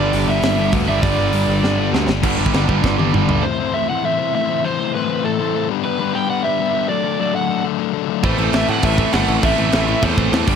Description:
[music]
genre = punk rock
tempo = 200 BPM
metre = 4/4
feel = straight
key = A dorian from 3.4 s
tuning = A4 = 440 Hz
[part]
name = overdriven electric guitar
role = melody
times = 0.0-10.5 s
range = A4 to G5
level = -22 LUFS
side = right 3 dB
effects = none
[part]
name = distorted electric guitar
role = riff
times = 0.0-3.4, 8.2-10.6 s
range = G2 to A3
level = -21 LUFS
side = right 13 dB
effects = overdrive
[part]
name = sludgy distorted guitar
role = riff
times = 0.0-10.6 s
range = G2 to C5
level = -21 LUFS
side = left 15 dB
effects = overdrive
[part]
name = sludgy distorted guitar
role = riff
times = 0.0-3.4, 8.2-10.6 s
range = G2 to A3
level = -25 LUFS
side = left 1 dB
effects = overdrive
[part]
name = modern bright picked electric bass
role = bass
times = 0.0-3.4, 8.2-10.6 s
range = G1 to A2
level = -21 LUFS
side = right 1 dB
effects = none
[part]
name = tight metal drum kit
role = drums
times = 0.1-3.4, 8.2-10.5 s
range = crash cymbal, hi-hat, kick drum, snare drum, toms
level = -21 LUFS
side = right 1 dB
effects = none
[sound]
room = little or no reverb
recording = none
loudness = -15 LUFS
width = side -7 dB against mid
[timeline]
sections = 0.0-2.2 A section; 2.2-3.4 B section; 3.4-10.6 C section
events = half time 0.0-2.2; drum fill 1.6-2.2, 2.8-3.4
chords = 0.0 G; 3.4 Am; 5.7 G; 6.9 D/F#; 8.2 Am

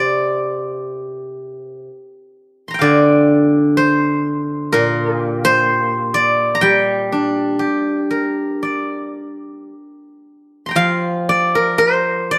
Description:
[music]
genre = chinese traditional, Chinese solo plucked strings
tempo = 54-64 BPM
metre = 4/4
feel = rubato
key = G yu mode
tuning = A4 = 440 Hz
[part]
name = steel-string zither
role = solo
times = 0.0-12.4 s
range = Bb2 to C6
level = -17 LUFS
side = equal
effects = none
[sound]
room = light reverb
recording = band playing live in one room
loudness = -16 LUFS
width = mono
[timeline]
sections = 0.0-10.8 A section; 10.8-12.4 B section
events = none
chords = none

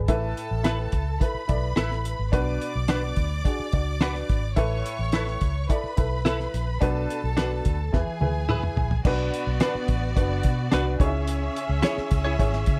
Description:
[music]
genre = uptempo 1960s-style soul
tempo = 107 BPM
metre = 4/4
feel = straight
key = unclear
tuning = A4 = 444 Hz
[part]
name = dark upright piano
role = accompaniment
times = 0.0-12.8 s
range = A2 to D5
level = -32 LUFS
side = equal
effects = none
[part]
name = vintage muted fingered electric bass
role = bass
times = 0.0-12.8 s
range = F#1 to C#3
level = -29 LUFS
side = equal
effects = none
[part]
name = warm studio string section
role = second line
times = 0.1-12.8 s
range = B3 to D6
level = -35 LUFS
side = equal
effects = none
[part]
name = cloth-damped thuddy drum kit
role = drums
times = 0.1-12.8 s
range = crash cymbal, hi-hat, kick drum, snare drum, toms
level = -28 LUFS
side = equal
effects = none
[part]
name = direct-recorded clean electric guitar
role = stabs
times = 0.6-12.4 s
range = D4 to C#5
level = -32 LUFS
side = equal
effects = ensemble chorus
[sound]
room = studio reverb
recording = none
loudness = -25 LUFS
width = mono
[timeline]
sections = 0.0-9.1 A section; 9.1-12.8 B section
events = drum fill 7.9-9.1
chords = 0.1 Asus2; 2.3 Bm; 4.6 Asus2; 6.8 Bm; 7.9 E; 9.1 Bm; 11.0 C#m

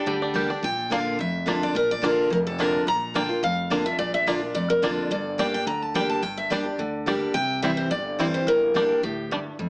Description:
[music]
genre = bluegrass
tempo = 214 BPM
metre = 4/4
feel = straight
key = unclear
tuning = A4 = 441 Hz
[part]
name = bluegrass banjo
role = melody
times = 0.0-9.4 s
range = G3 to G4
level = -29 LUFS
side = right 1 dB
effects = plate reverb
[part]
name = picked steel-string acoustic guitar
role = melody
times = 0.0-9.4 s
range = G4 to Bb5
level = -24 LUFS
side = equal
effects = plate reverb
[part]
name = picked steel-string acoustic guitar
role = accompaniment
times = 0.0-9.7 s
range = F2 to G4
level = -26 LUFS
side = equal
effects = none
[part]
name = upright bass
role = bass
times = 0.1-9.7 s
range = F1 to D2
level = -36 LUFS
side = equal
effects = none
[sound]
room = moderate large studio reverb, RT60 0.9 s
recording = small speaker sound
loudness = -22 LUFS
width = side -27 dB against mid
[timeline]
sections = 0.6-9.6 A section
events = none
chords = 0.0 Gm; 0.6 Bb; 5.1 Gm; 7.3 C; 8.5 Gm

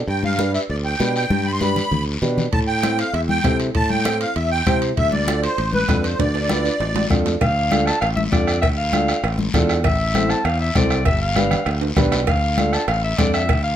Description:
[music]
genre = latin, cumbia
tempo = 197 BPM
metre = 4/4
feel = straight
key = unclear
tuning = A4 = 439 Hz
[part]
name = musette accordion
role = melody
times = 0.1-7.1 s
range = B4 to C6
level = -22 LUFS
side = right 1 dB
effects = none
[part]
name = modern bright fingered electric bass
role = bass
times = 0.1-13.8 s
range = G1 to C3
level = -22 LUFS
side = equal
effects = none
[part]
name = congas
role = percussion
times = 0.1-13.3 s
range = none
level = -24 LUFS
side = left 4 dB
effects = none
[part]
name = guiro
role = percussion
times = 0.1-13.8 s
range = none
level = -31 LUFS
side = left 4 dB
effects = none
[part]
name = warm upright piano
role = accompaniment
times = 0.4-13.4 s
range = C4 to C5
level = -25 LUFS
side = right 2 dB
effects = none
[part]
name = bombo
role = percussion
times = 2.5-13.6 s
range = none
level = -22 LUFS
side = right 1 dB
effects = none
[part]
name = timbales and cowbell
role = percussion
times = 2.5-13.6 s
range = none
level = -29 LUFS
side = right 7 dB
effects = none
[part]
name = bright clarinet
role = second line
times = 7.4-13.8 s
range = D5 to A5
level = -22 LUFS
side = left 2 dB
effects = none
[sound]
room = moderate studio reverb, RT60 0.6 s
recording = none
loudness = -17 LUFS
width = side -10 dB against mid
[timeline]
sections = 0.0-7.4 A section; 7.4-13.8 B section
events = drum fill 1.3-2.5, 6.2-7.4, 11.8-12.3; clarinet solo 7.4-13.8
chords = 0.0 G; 2.5 Am; 5.0 Dm; 9.8 Am; 11.1 G; 12.3 Dm

